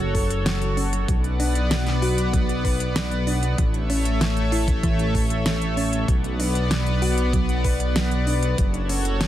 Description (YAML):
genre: synthwave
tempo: 96 BPM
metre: 4/4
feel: straight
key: unclear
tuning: A4 = 442 Hz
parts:
  - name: chorused pulse-width pad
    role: sustained chords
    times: 0.0-9.3 s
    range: A3 to F#5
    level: -26 LUFS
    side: left 1 dB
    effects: sidechain pumping
  - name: dark detuned saw bass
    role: bass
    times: 0.0-9.3 s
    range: F#1 to B1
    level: -23 LUFS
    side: equal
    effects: tube saturation
  - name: thumb-piano-like synth pluck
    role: arpeggios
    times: 0.1-9.3 s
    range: E3 to B4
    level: -29 LUFS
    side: right 2 dB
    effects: chorus, cassette tape, digital delay
  - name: electronic kick drum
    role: drums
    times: 0.1-8.7 s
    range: none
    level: -22 LUFS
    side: equal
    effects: none
  - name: pop drum kit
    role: drums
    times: 0.1-9.3 s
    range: hi-hat, snare drum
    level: -28 LUFS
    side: equal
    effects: none
room: light reverb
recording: dense, heavily limited modern master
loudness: -20 LUFS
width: side -12 dB against mid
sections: 0.0-9.3 A section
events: none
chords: 0.0 F#m; 1.1 Bm; 3.6 A; 6.1 Bm; 8.6 F#m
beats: 0.46 | 1.08 1.71 2.33 2.96 | 3.58 4.21 4.83 5.46 | 6.08 6.71 7.33 7.96 | 8.58 9.21